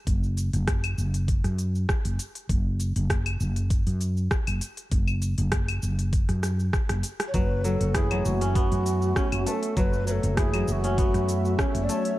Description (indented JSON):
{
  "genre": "organic downtempo",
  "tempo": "99 BPM",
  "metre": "4/4",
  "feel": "swing 53% on 16ths",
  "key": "F# minor",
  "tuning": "A4 = 440 Hz",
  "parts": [
    { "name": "woody fretless electric bass", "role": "bass", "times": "0.1-11.9 s", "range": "F#1 to F#2", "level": "-26 LUFS", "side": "equal", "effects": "sidechain pumping" },
    { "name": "electronic kick drum", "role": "drums", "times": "0.1-11.7 s", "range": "none", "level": "-26 LUFS", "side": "equal", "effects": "none" },
    { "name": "organic electronic drum kit", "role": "drums", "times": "0.1-12.2 s", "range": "claves, hi-hat, rim click, shaker", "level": "-32 LUFS", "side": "equal", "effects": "none" },
    { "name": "breathy hollow low Native American-style wooden flute", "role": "melody", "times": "7.3-12.2 s", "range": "F#4 to D5", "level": "-30 LUFS", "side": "equal", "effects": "vintage 12-bit sampler grit, tape echo" },
    { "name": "warm analog pad", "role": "sustained chords", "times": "7.3-12.2 s", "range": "F#3 to E5", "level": "-33 LUFS", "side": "left 1 dB", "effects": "chorus, sidechain pumping" },
    { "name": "kora", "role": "arpeggios", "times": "7.3-12.2 s", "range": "E3 to C#4", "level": "-30 LUFS", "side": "right 1 dB", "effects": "tape echo" }
  ],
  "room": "light reverb",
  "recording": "dark, warm production",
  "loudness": "-23 LUFS",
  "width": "side -16 dB against mid",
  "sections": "0.0-12.2 A section",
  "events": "drum fill 6.4-7.3",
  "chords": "0.0 F#m7"
}